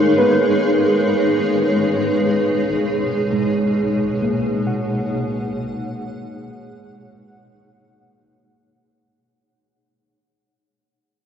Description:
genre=ambient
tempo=67 BPM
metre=4/4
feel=straight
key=B lydian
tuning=A4 = 438 Hz
part: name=granular cloud pad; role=sustained chords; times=0.0-9.1 s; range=B2 to F#5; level=-18 LUFS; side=equal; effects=built-in reverb
part: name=muted felt-like synth keys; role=arpeggios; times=0.0-9.2 s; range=G#3 to F#5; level=-21 LUFS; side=equal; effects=chorus, tape echo
room=wet huge ambient reverb, RT60 8.4 s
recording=dark, warm production, nothing above 7.7 kHz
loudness=-16 LUFS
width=side -8 dB against mid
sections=0.0-9.1 A section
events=fade-out 0.0-9.1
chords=0.0 C#9; 2.0 Bmaj7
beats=0.18 1.07 | 1.97 2.86 3.76 4.66 | 5.55 6.45 7.34 8.24

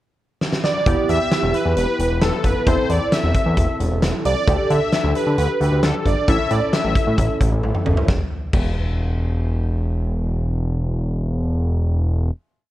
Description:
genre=synth-pop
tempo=133 BPM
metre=4/4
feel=straight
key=unclear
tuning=A4 = 441 Hz
part: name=huge arena drum kit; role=drums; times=0.4-8.7 s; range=crash cymbal, hi-hat, kick drum, snare drum, toms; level=-21 LUFS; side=equal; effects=none
part: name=analog synth brass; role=melody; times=0.6-7.4 s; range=A4 to E5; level=-22 LUFS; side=equal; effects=chorus, ping-pong delay
part: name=warm analog keys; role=accompaniment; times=0.9-8.0 s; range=B3 to A4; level=-24 LUFS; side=equal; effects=chorus, phaser
part: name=fat analog bass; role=bass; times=0.9-12.3 s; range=E1 to D3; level=-20 LUFS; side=equal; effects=none
room=light reverb, small room ambience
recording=worn, warbling old tape, cassette tape, warbly pitch drift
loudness=-17 LUFS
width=side -15 dB against mid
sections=0.0-0.9 pickup bar; 0.9-8.1 verse; 8.1-11.7 final note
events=drum fill 0.4-0.9, 7.6-8.1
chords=0.0 N.C.; 0.9 Em; 2.7 Am/E; 4.5 Dsus4; 6.3 A; 8.1 N.C.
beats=0.41 | 0.86 1.32 1.77 2.22 | 2.67 3.12 3.57 4.02 | 4.47 4.93 5.38 5.83 | 6.28 6.73 7.18 7.63 | 8.08 8.54 8.99 9.44 | 9.89 10.34 10.79 11.24

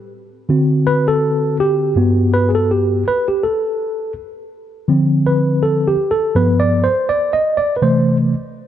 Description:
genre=hip hop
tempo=82 BPM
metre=4/4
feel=swing 57% on 16ths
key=unclear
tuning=A4 = 440 Hz
part: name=mellow tine electric piano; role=solo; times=0.5-8.3 s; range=G2 to D#5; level=-14 LUFS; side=equal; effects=medium stereo tremolo
room=light reverb, digital ambience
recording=dark, warm production, nothing above 10.3 kHz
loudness=-14 LUFS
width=side -10 dB against mid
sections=0.0-8.7 A section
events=tine electric piano solo 0.0-8.7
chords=0.0 N.C.; 0.5 D7; 2.0 Gmaj9; 4.9 Dm7; 6.4 G7; 7.8 C6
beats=0.50 1.23 | 1.96 2.70 3.43 4.16 | 4.89 5.62 6.35 7.09 | 7.82

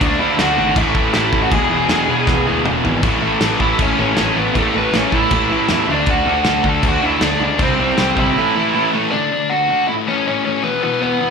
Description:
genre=punk rock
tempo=158 BPM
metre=4/4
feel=straight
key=unclear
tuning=A4 = 440 Hz
part: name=biting lead guitar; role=melody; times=0.0-11.3 s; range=A3 to A5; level=-18 LUFS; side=equal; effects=overdrive, slapback echo
part: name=overdriven semi-hollow guitar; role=riff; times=0.0-9.1 s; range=E2 to D4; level=-21 LUFS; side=right 10 dB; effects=slapback echo
part: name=sludgy distorted guitar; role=riff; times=0.0-11.3 s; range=E2 to D4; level=-22 LUFS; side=left 12 dB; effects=overdrive, slapback echo
part: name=tight distorted guitar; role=riff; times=0.0-9.1 s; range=E2 to D4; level=-22 LUFS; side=right 1 dB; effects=distortion, slapback echo
part: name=fuzz picked electric bass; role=bass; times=0.0-8.3 s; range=E1 to E2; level=-23 LUFS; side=equal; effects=overdrive
part: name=loose indie drum kit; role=drums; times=0.0-8.3 s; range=crash cymbal, kick drum, snare drum, toms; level=-20 LUFS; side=left 1 dB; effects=none
room=little or no reverb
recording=live gig heard through the venue's PA, club reverb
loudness=-14 LUFS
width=side -6 dB against mid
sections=0.0-3.0 A section; 3.0-9.1 B section; 9.1-11.3 A section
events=drum fill 2.3-3.0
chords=0.0 D; 0.8 A5; 1.5 E; 3.0 A; 5.9 D; 7.6 C; 8.4 A5; 9.1 D; 9.9 A; 10.6 E5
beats=| 0.01 0.39 0.77 1.15 | 1.52 1.90 2.28 2.66 | 3.04 3.42 3.80 4.18 | 4.56 4.94 5.32 5.70 | 6.08 6.46 6.84 7.22 | 7.60 7.98 8.36 8.74 | 9.12 9.50 9.88 10.26 | 10.64 11.02

